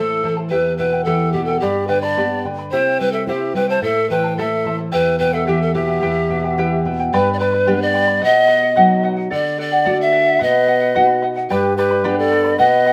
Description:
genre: andean folk, Andean ensemble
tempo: 109 BPM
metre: 2/4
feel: straight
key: E minor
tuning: A4 = 444 Hz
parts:
  - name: bright reedy polished pan flute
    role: melody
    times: 0.0-12.9 s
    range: G4 to E5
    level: -20 LUFS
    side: equal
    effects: plate reverb
  - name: charango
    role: accompaniment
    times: 0.0-12.9 s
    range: E4 to B5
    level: -23 LUFS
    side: equal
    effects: none
  - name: nylon-string guitar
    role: accompaniment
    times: 0.0-12.9 s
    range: E2 to G4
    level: -24 LUFS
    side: equal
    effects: none
  - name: breathy large quena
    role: second line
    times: 1.6-6.8, 10.4-12.9 s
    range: G4 to A5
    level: -25 LUFS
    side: equal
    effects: none
room: moderate studio reverb, RT60 0.6 s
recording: none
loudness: -17 LUFS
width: mono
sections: 0.0-7.1 A section; 7.1-12.9 B section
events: none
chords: 0.0 Am; 0.5 Em; 1.6 G; 2.7 C; 3.8 Am; 4.9 Em; 7.1 G; 8.2 B; 9.3 D; 10.4 B; 11.5 G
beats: | 0.52 1.07 | 1.62 2.17 | 2.72 3.27 | 3.83 4.38 | 4.92 5.47 | 6.02 6.57 | 7.12 7.67 | 8.22 8.76 | 9.31 9.86 | 10.40 10.95 | 11.50 12.04 | 12.59

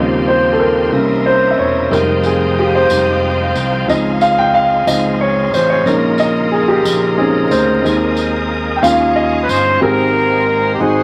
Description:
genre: slow gospel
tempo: 61 BPM (dotted quarters)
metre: 6/8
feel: straight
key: Ab major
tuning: A4 = 439 Hz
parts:
  - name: warm concert grand piano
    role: accompaniment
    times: 0.0-11.0 s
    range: Ab2 to G5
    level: -16 LUFS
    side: equal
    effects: none
  - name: bright tonewheel organ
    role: sustained chords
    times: 0.0-11.0 s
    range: C3 to G5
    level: -23 LUFS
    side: equal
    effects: slow rotary speaker, overdrive
  - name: warm studio string section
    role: sustained chords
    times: 0.0-11.0 s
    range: Db5 to Eb6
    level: -29 LUFS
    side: equal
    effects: none
  - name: mellow fretless electric bass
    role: bass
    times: 0.0-11.0 s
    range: E1 to Eb2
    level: -22 LUFS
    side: equal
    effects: none
  - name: tambourine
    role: percussion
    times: 1.9-9.8 s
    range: none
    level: -30 LUFS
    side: equal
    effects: none
  - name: clear trumpet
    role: melody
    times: 9.4-11.0 s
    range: G4 to C5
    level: -17 LUFS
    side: equal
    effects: none
room: moderate studio reverb, RT60 0.6 s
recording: vinyl crackle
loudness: -14 LUFS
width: mono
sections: 0.0-9.8 A section; 9.8-11.0 B section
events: grand piano solo 0.0-9.8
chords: 0.0 Eb13; 0.9 C7b9; 1.9 Fm9; 3.9 Dbmaj9; 5.9 Bbm11; 7.8 Ab/Eb; 8.8 Eb9sus4; 9.8 Abmaj9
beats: 0.93 | 1.92 2.90 | 3.89 4.88 | 5.86 6.85 | 7.84 8.83 | 9.82 10.80

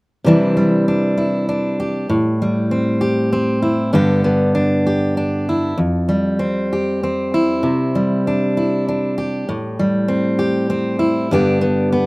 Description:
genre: folk, solo fingerstyle acoustic guitar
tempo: 98 BPM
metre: 3/4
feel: straight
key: C major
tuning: A4 = 440 Hz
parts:
  - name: fingerpicked steel-string acoustic guitar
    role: solo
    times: 0.2-12.1 s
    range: F2 to G4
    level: -15 LUFS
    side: equal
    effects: none
room: light reverb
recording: recorded outdoors, with no room sound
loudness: -15 LUFS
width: side -24 dB against mid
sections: 0.3-12.1 A section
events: none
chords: 0.3 Cadd9; 2.1 Am7; 3.9 G; 5.8 Fsus2; 7.6 Cadd9; 9.5 Am7; 11.3 G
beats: | 0.26 0.88 1.49 | 2.10 2.72 3.33 | 3.93 4.55 5.16 | 5.77 6.38 7.00 | 7.63 8.25 8.87 | 9.48 10.09 10.70 | 11.30 11.92

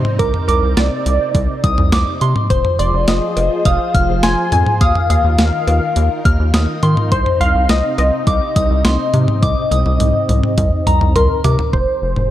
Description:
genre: synth-pop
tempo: 104 BPM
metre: 4/4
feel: straight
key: C minor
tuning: A4 = 440 Hz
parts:
  - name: funky polysynth comp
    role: melody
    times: 0.0-12.3 s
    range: Bb4 to Ab5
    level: -19 LUFS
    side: left 1 dB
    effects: chorus, tape echo
  - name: soft synth bell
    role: second line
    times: 0.0-11.5 s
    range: Bb5 to F6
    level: -24 LUFS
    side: right 1 dB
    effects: chorus, phaser, tape echo
  - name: soft string machine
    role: sustained chords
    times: 0.0-12.3 s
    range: C3 to C5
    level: -24 LUFS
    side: equal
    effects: ensemble chorus
  - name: rubbery square bass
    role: bass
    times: 0.0-12.3 s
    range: F1 to Eb3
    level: -16 LUFS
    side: equal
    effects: none
  - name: clean 12-bit digital drum machine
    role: drums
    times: 0.0-12.3 s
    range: cowbell, hi-hat, kick drum, snare drum, toms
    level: -18 LUFS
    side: equal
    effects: none
room: light reverb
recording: dark, warm production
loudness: -12 LUFS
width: side -13 dB against mid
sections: 0.0-11.7 A section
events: drum fill 9.4-11.7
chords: 0.0 Cmadd9; 2.5 Fm; 4.8 Ebsus2; 7.1 Cm; 11.7 Fm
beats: | 0.20 0.77 1.35 1.93 | 2.50 3.08 3.66 4.23 | 4.81 5.39 5.96 6.54 | 7.12 7.70 8.27 8.85 | 9.43 10.00 10.58 11.16 | 11.73

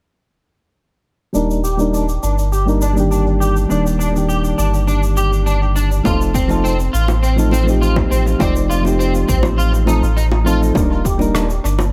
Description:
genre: sunset chillout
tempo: 102 BPM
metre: 4/4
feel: straight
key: Eb lydian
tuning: A4 = 439 Hz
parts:
  - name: soft electric-piano-like synth keys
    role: accompaniment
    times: 1.3-11.5 s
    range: Eb3 to D5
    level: -21 LUFS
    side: equal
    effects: chorus, low-pass filter, analog delay
  - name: electric guitar at the edge of break-up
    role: arpeggios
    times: 1.3-11.8 s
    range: C4 to G4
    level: -25 LUFS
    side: equal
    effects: ensemble chorus, low-pass filter, analog delay
  - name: warm sub bass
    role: bass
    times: 1.3-11.9 s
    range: Eb1 to A1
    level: -19 LUFS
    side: equal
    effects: none
  - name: shaker and rim click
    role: drums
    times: 1.3-11.9 s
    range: none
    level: -31 LUFS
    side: equal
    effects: tape echo
  - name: electronic kick drum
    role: drums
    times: 6.0-11.2 s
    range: none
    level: -22 LUFS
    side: equal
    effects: overdrive
  - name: bongos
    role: percussion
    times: 6.0-11.9 s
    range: none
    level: -28 LUFS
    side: equal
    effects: none
room: light reverb, studio ambience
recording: echo-heavy mix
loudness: -16 LUFS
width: mono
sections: 1.3-10.8 A section; 10.8-11.9 B section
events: filter sweep on synth keys 1.3-10.8; filter sweep on clean electric guitar 1.3-10.8, 10.8-11.9; kick drops out 10.2-10.8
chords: 1.3 Ebmaj7; 6.1 F7; 10.8 Ebmaj7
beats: | 1.34 1.93 2.52 3.11 | 3.70 4.29 4.87 5.46 | 6.05 6.64 7.23 7.82 | 8.40 8.99 9.58 10.17 | 10.76 11.35

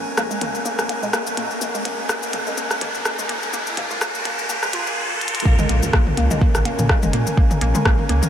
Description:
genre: minimal techno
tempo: 125 BPM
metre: 4/4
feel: swing 56% on 16ths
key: Bb minor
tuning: A4 = 440 Hz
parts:
  - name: round analog bass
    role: bass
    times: 0.0-8.2 s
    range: F1 to Bb2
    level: -21 LUFS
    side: equal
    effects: sidechain pumping
  - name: riser and impact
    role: sound effects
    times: 0.2-7.4 s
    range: none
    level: -28 LUFS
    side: equal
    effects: none
  - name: airy breathy pad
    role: texture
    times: 0.0-8.3 s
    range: Db4 to Ab5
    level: -30 LUFS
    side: equal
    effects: chorus, sidechain pumping
  - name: hollow square pluck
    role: riff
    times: 0.2-8.1 s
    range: Ab3 to F4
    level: -27 LUFS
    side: left 1 dB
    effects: chorus, sidechain pumping, ping-pong delay
  - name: minimal click drum kit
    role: drums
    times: 0.2-8.3 s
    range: cabasa, hi-hat, rim click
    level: -24 LUFS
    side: equal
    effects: none
  - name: electronic toms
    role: percussion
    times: 0.4-8.3 s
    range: none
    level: -27 LUFS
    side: left 1 dB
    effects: ping-pong delay
  - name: electronic kick drum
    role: drums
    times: 5.5-8.0 s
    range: none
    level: -18 LUFS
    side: equal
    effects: none
  - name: bubbling stepped-filter texture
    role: texture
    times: 6.6-8.3 s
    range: Bb3 to Bb4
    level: -34 LUFS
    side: right 5 dB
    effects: none
room: moderate huge ambient reverb, RT60 7.0 s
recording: dreamy mix soaked in reverb, high-pass filter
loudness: -18 LUFS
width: side -9 dB against mid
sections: 0.0-5.5 A section; 5.5-8.3 B section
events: build-up 0.0-5.5; filter sweep on synth arpeggio sound 0.0-5.5; filter sweep 0.0-5.5; riser 0.2-5.5; drum fill 5.2; drop 5.5-8.3; impact 5.5-7.4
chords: 0.0 Bbm7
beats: 0.17 0.66 1.14 | 1.61 2.10 2.58 3.06 | 3.54 4.01 4.50 4.97 | 5.46 5.93 6.42 6.89 | 7.38 7.86

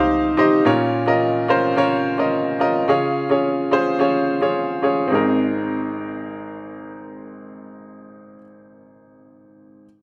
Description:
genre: pop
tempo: 108 BPM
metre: 4/4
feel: straight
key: Ab major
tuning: A4 = 441 Hz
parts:
  - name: bright upright piano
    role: accompaniment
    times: 0.0-9.9 s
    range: Ab1 to F5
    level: -20 LUFS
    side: equal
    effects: none
room: moderate large studio reverb, RT60 1.4 s, small room reverb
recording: none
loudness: -19 LUFS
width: mono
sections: 0.0-5.1 A section; 5.1-7.3 B section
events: none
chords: 0.0 Cm; 0.7 Bbm; 2.9 Db; 5.1 Abadd9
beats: 0.10 | 0.66 1.22 1.77 2.33 | 2.89 3.44 4.00 4.55 | 5.11 5.67 6.22 6.78

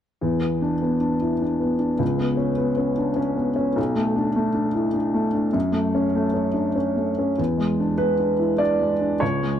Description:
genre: neoclassical minimalist piano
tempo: 100 BPM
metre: 3/4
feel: rubato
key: unclear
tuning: A4 = 440 Hz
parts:
  - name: dark upright piano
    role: solo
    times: 0.2-9.6 s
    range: B1 to D5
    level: -20 LUFS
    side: equal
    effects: none
room: light reverb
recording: dark, warm production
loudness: -20 LUFS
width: side -9 dB against mid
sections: 0.2-7.4 A section; 7.4-9.6 B section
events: none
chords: 0.2 E5; 2.0 Bmadd9/C#; 3.8 Bm7; 5.5 F#m; 7.4 E7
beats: | 0.21 0.82 1.43 | 2.01 2.60 3.19 | 3.78 4.36 4.95 | 5.54 6.14 6.75 | 7.38 8.01 8.61 | 9.21

